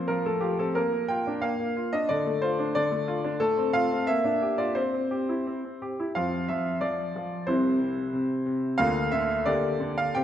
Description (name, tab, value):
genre	classical-period piano sonatina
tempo	90 BPM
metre	2/4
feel	rubato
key	F major from 3.4 s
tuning	A4 = 442 Hz
part	bright grand piano	solo	0.0-10.2 s	C2 to G5	-24 LUFS	equal	none
room	wet scoring stage reverb, RT60 1.6 s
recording	none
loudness	-24 LUFS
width	side -10 dB against mid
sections	0.0-6.2 A section; 6.2-10.2 B section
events	none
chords	0.1 F; 0.8 Bb; 2.1 Dm; 3.4 F/A; 4.1 Gm7/Bb; 4.8 C; 6.2 F5; 7.5 C; 8.8 Bb/D; 9.5 Gm/D